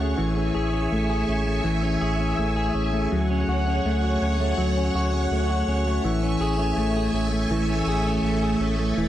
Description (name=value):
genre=dream pop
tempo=82 BPM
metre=4/4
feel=straight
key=A major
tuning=A4 = 439 Hz
part: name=string machine, violins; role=sustained chords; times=0.0-9.1 s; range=A3 to D6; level=-28 LUFS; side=right 2 dB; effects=ensemble chorus
part: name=clean electric guitar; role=arpeggios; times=0.0-9.1 s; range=E3 to G#4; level=-24 LUFS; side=left 1 dB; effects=wide subtle chorus, analog delay
part: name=sub bass with octave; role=bass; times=0.0-9.1 s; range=E1 to D2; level=-26 LUFS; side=equal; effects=none
room=light reverb, digital ambience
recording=dry, gritty hardware recording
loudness=-21 LUFS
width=side -12 dB against mid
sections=0.0-9.1 A section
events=none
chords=0.2 Amaj7; 3.1 Dmaj7; 6.0 Amaj7